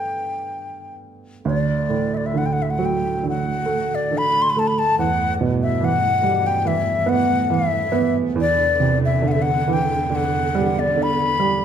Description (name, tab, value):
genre	celtic folk, Celtic slow air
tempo	59-73 BPM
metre	4/4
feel	rubato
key	unclear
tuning	A4 = 440 Hz
part	wooden flute	melody	0.0-11.6 s	D5 to C6	-21 LUFS	left 3 dB	none
part	warm upright piano	accompaniment	0.0-11.6 s	D2 to G4	-22 LUFS	right 5 dB	none
part	dark studio string section	sustained chords	1.4-11.6 s	D2 to B3	-27 LUFS	equal	none
room	wet recital hall reverb, RT60 1.4 s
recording	minimal, uncompressed stereo recording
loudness	-18 LUFS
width	side -8 dB against mid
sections	0.0-1.4 A section; 1.4-11.6 B section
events	none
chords	0.0 Gadd9; 1.4 D; 5.0 Em; 8.4 Cadd9/E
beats	0.50 | 1.45 2.33 3.22 4.11 | 4.98 5.82 6.65 7.50 | 8.35 9.22 10.09 10.96